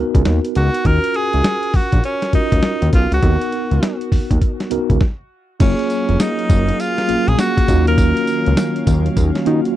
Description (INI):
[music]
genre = R&B, new jack swing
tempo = 101 BPM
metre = 4/4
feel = swing 63% on 16ths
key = Eb minor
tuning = A4 = 441 Hz
[part]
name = mellow tine electric piano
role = accompaniment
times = 0.0-9.8 s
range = Bb3 to Cb5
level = -21 LUFS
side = equal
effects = medium stereo tremolo
[part]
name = fat analog bass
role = bass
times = 0.0-9.6 s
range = F1 to Eb3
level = -17 LUFS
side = equal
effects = none
[part]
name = dusty soul sampler-style drum kit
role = drums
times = 0.1-9.8 s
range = crash cymbal, hi-hat, kick drum, snare drum, tambourine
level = -16 LUFS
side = equal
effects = none
[part]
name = bright tenor saxophone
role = melody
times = 0.6-9.0 s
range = Db4 to Bb4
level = -21 LUFS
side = equal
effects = none
[part]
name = brassy analog pad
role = sustained chords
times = 5.6-9.8 s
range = Eb3 to F5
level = -25 LUFS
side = right 1 dB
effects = chorus
[sound]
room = little or no reverb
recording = dry, close 1970s-style studio recording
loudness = -14 LUFS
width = side -13 dB against mid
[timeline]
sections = 0.0-5.6 A section; 5.6-9.8 B section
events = stop 5.0-5.6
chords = 0.0 Db13sus4; 0.8 Ebm7; 3.2 Db13sus4; 5.6 Gbmaj9; 7.7 Ebm9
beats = 0.25 | 0.85 1.44 2.04 2.63 | 3.22 3.82 4.41 5.01 | 5.60 6.20 6.79 7.38 | 7.98 8.57 9.16 9.76